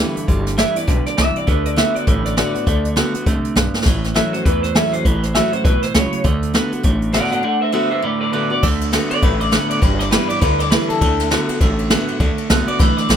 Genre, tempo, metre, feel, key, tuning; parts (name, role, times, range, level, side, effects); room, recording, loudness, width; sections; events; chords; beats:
rockabilly; 201 BPM; 4/4; swing 60% on 8ths; D mixolydian; A4 = 440 Hz
picked steel-string acoustic guitar; accompaniment; 0.0-13.2 s; E2 to F#4; -24 LUFS; left 2 dB
electric guitar at the edge of break-up; riff; 0.0-13.2 s; G2 to B3; -23 LUFS; right 5 dB; wide subtle chorus
upright bass; bass; 0.0-13.2 s; G1 to E2; -22 LUFS; equal
jazz brush drum kit; drums; 0.2-13.2 s; crash cymbal, hi-hat, kick drum, ride cymbal, snare drum; -18 LUFS; equal
electric guitar through a small old amp; melody; 0.6-13.2 s; A4 to F#5; -20 LUFS; left 1 dB; wide subtle chorus, analog delay
light reverb; -15 LUFS; side -9 dB against mid
0.0-8.6 A section; 8.6-13.2 B section
drum fill 3.7; clean electric guitar solo 8.6-13.2
0.0 G6; 1.5 D6; 3.9 A6; 6.2 D6; 9.8 G6; 11.0 D6
| 0.28 0.58 0.88 1.18 | 1.48 1.77 2.07 2.37 | 2.67 2.97 3.26 3.56 | 3.86 4.16 4.46 4.75 | 5.05 5.35 5.65 5.95 | 6.25 6.54 6.84 7.14 | 7.44 7.74 8.03 8.33 | 8.63 8.93 9.23 9.52 | 9.82 10.12 10.42 10.71 | 11.01 11.31 11.61 11.90 | 12.20 12.50 12.79 13.09